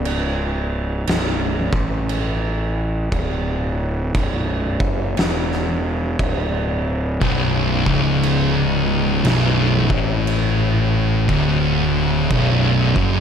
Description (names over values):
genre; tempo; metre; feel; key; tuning
stoner and doom metal; 59 BPM; 4/4; swing 64% on 8ths; B minor; A4 = 440 Hz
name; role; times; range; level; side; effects
fuzz picked electric bass; bass; 0.0-13.2 s; B0 to A1; -22 LUFS; equal; overdrive
oversized low-tuned drum kit; drums; 0.1-13.1 s; crash cymbal, kick drum, snare drum; -23 LUFS; equal; none
thick fuzz guitar; riff; 7.2-13.2 s; B1 to A2; -19 LUFS; left 8 dB; distortion
thick fuzz guitar; riff; 7.2-13.2 s; B1 to A2; -21 LUFS; right 10 dB; distortion
room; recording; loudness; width
moderate large studio reverb, RT60 0.9 s; none; -17 LUFS; side -7 dB against mid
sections
0.0-13.2 A section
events
none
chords
0.0 Bm